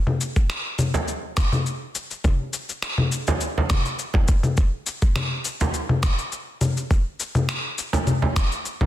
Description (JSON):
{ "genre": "downtempo", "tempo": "103 BPM", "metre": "4/4", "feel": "straight", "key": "none", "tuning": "none", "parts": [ { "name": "electronic congas, cabasa and finger snaps", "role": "drums", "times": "0.1-8.9 s", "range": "none", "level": "-24 LUFS", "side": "left 2 dB", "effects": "overdrive, studio ambience, soft clipping on snare" }, { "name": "electronic kick drum", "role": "drums", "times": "0.4-8.9 s", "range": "none", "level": "-19 LUFS", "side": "equal", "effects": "overdrive, studio ambience" }, { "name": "frame drum", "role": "percussion", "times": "0.9-8.9 s", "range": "none", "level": "-24 LUFS", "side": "right 2 dB", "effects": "none" } ], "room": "light reverb, digital ambience", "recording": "dense, heavily limited modern master", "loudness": "-21 LUFS", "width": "side -13 dB against mid", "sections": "0.0-8.9 A section", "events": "none", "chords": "none", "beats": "0.50 1.08 1.66 | 2.25 2.83 3.41 3.99 | 4.58 5.16 5.74 6.32 | 6.91 7.49 8.07 8.65" }